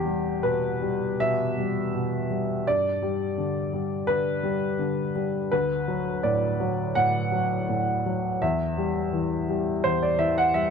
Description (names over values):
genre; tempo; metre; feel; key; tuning
neoclassical minimalist piano; 83 BPM; 4/4; rubato; E minor; A4 = 438 Hz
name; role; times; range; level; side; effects
warm baby grand piano; solo; 0.0-10.7 s; D2 to F#5; -23 LUFS; left 1 dB; none
room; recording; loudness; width
moderate booth ambience, RT60 0.2 s; none; -23 LUFS; side -6 dB against mid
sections
0.0-10.7 A section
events
none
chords
0.0 Em; 2.7 G; 5.5 D6; 8.4 Em9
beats
0.43 1.20 1.93 | 2.66 3.37 4.08 4.80 | 5.52 6.25 6.96 7.69 | 8.41 9.13 9.84 10.55